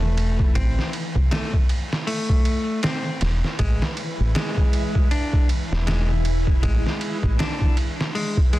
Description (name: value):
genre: trip hop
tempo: 79 BPM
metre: 4/4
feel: swing 58% on 16ths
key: A harmonic minor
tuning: A4 = 440 Hz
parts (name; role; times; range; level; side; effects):
- semi-hollow electric guitar; arpeggios; 0.0-8.6 s; G#3 to D4; -28 LUFS; left 2 dB; tape echo
- deep dub fingered electric bass; bass; 0.0-7.4 s; E1 to C2; -21 LUFS; equal; none
- backwards swelling texture; texture; 0.0-8.6 s; E3 to E4; -32 LUFS; equal; built-in reverb
- trip hop sampler-style drum kit; drums; 0.2-8.6 s; hi-hat, kick drum, ride cymbal, snare drum; -21 LUFS; equal; small room ambience
room: digital ambience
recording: dense, heavily limited modern master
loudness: -19 LUFS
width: side -17 dB against mid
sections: 0.0-8.6 A section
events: none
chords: 0.0 Am; 3.6 E7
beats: | 0.55 1.31 2.07 2.83 | 3.59 4.35 5.11 5.87 | 6.63 7.39 8.15